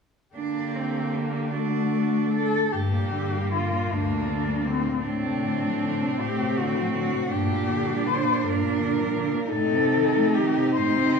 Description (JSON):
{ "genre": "classical, lyrical piece for cello ensemble", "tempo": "48-56 BPM (dotted quarters)", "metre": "6/8", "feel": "rubato", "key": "G minor", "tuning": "A4 = 440 Hz", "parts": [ { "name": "warm cello", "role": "melody", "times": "0.3-11.2 s", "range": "C4 to C5", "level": "-27 LUFS", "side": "left 4 dB", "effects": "none" }, { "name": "rich cello", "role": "second line", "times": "0.4-11.2 s", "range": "Bb3 to Eb4", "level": "-27 LUFS", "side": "right 6 dB", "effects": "none" }, { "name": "dark cello", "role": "accompaniment", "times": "0.4-11.2 s", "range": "G2 to Bb3", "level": "-29 LUFS", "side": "left 3 dB", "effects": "none" }, { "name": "rich cello", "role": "bass", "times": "0.4-11.2 s", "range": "D2 to D3", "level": "-29 LUFS", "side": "left 1 dB", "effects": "none" } ], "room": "wet recital hall reverb, RT60 1.7 s", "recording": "recorded in a church or concert hall", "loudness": "-22 LUFS", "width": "side -5 dB against mid", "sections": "0.4-2.7 A section; 2.7-11.2 B section", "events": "none", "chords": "0.4 Gm/D; 1.5 D; 2.7 Gm; 5.0 D7/A; 7.3 Gm; 9.5 Adim" }